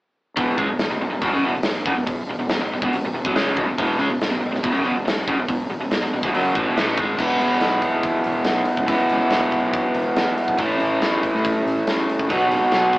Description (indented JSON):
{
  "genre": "classic rock",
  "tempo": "141 BPM",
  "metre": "4/4",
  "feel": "straight",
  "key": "E major",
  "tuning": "A4 = 440 Hz",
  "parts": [
    { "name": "crunchy overdriven guitar", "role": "riff", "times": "0.4-13.0 s", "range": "E2 to F#4", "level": "-20 LUFS", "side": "equal", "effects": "none" },
    { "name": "fuzz fingered electric bass", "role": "bass", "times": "0.4-13.0 s", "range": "E1 to A2", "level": "-27 LUFS", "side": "equal", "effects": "overdrive" },
    { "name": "big rock drum kit", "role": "drums", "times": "0.4-13.0 s", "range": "crash cymbal, hi-hat, kick drum, snare drum", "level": "-25 LUFS", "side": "equal", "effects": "none" }
  ],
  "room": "moderate studio ambience, RT60 0.5 s",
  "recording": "band playing live in one room, AM radio sound",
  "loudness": "-18 LUFS",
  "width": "side -20 dB against mid",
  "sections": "0.4-7.2 A section; 7.2-13.0 B section",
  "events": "none",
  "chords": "0.4 E; 10.6 A; 12.3 B",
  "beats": "| 0.38 0.80 1.23 1.65 | 2.08 2.50 2.93 3.35 | 3.78 4.21 4.63 5.06 | 5.48 5.91 6.33 6.76 | 7.19 7.61 8.04 8.46 | 8.89 9.32 9.74 10.17 | 10.60 11.02 11.45 11.87 | 12.30 12.72"
}